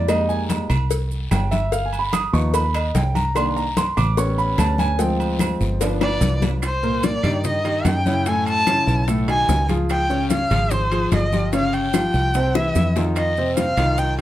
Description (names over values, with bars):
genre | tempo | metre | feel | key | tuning
Afro-Cuban jazz | 147 BPM | 4/4 | straight | unclear | A4 = 439 Hz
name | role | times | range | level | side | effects
clear grand piano | accompaniment | 0.0-14.2 s | A2 to D#6 | -23 LUFS | equal | none
fingered electric bass | bass | 0.0-14.2 s | G1 to G2 | -22 LUFS | equal | none
agogo bells and timbales | percussion | 0.1-14.2 s | none | -32 LUFS | right 6 dB | none
claves | percussion | 0.1-14.0 s | none | -37 LUFS | right 4 dB | none
congas | percussion | 0.1-14.2 s | none | -26 LUFS | left 2 dB | none
cowbell and bongos | percussion | 0.1-14.2 s | none | -28 LUFS | left 6 dB | none
guiro | percussion | 0.1-14.2 s | none | -39 LUFS | left 6 dB | none
maracas | percussion | 0.1-14.2 s | none | -37 LUFS | right 8 dB | none
clear erhu | melody | 6.0-14.2 s | C5 to A5 | -22 LUFS | equal | none
room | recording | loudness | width
moderate studio reverb, RT60 0.6 s | none | -18 LUFS | side -13 dB against mid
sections
0.0-6.6 A section; 6.6-14.2 B section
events
grand piano solo 0.0-6.6; drum fill 5.8-6.6, 12.3-13.2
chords
0.1 Fm11; 1.7 Gaug7; 3.4 Cm9; 4.2 A7; 5.0 Dm7b5; 5.8 G7; 6.6 Cm9; 8.3 F#m7; 9.1 B9; 9.9 Dbmaj9; 11.5 Dbmaj7#11/G; 12.3 C; 13.2 F5